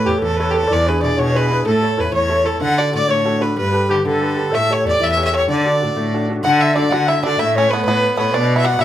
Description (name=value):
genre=celtic folk, Celtic jig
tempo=125 BPM (dotted quarters)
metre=6/8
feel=straight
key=D major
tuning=A4 = 440 Hz
part: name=rich fiddle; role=melody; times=0.0-8.8 s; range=G4 to F#5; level=-19 LUFS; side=equal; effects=none
part: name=baroque flute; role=second line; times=0.0-8.8 s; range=G4 to F#5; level=-22 LUFS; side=left 2 dB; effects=none
part: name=clear concert grand piano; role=accompaniment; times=0.0-8.8 s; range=B2 to D5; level=-21 LUFS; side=equal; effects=none
part: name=clear cello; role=bass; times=0.1-8.8 s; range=E2 to D3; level=-21 LUFS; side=right 1 dB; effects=none
part: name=bluegrass banjo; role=second line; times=6.4-8.8 s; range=B3 to F#4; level=-23 LUFS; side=right 5 dB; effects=none
room=moderate studio reverb, RT60 0.6 s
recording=none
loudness=-14 LUFS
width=side -11 dB against mid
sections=0.0-6.4 A section; 6.4-8.8 B section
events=none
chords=0.0 Aadd9; 0.7 E7; 1.7 A; 2.6 D; 3.6 Gadd9; 4.5 A7; 5.5 D; 7.4 Aadd9; 8.3 Bm